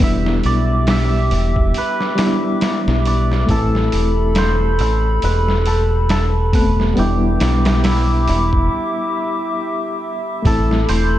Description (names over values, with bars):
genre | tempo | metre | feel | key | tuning
trip hop | 69 BPM | 4/4 | swing 58% on 16ths | E minor | A4 = 437 Hz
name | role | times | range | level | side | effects
hammered dulcimer | melody | 0.0-11.2 s | E4 to E5 | -22 LUFS | equal | tape echo
bright reed electric piano | accompaniment | 0.0-11.2 s | G3 to A4 | -22 LUFS | left 1 dB | fast tremolo, tape echo
warbly tape-like pad | sustained chords | 0.0-11.2 s | G4 to D6 | -25 LUFS | left 1 dB | chorus, built-in reverb
deep dub fingered electric bass | bass | 0.0-11.2 s | E1 to B1 | -17 LUFS | equal | none
trip hop sampler-style drum kit | drums | 0.0-11.1 s | hi-hat, kick drum, snare drum | -20 LUFS | equal | vintage 12-bit sampler grit
bowed-like drone | texture | 0.0-8.7 s | G4 | -37 LUFS | right 6 dB | none
room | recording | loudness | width
moderate plate reverb, RT60 2.4 s | dreamy mix soaked in reverb | -14 LUFS | side -13 dB against mid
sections
0.0-10.4 A section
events
break 8.7-10.4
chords
0.0 Em7; 3.5 Amadd9; 7.0 Em7; 10.4 Amadd9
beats
| 0.01 0.88 1.75 2.62 | 3.49 4.36 5.23 6.10 | 6.97 7.84 8.71 9.58 | 10.45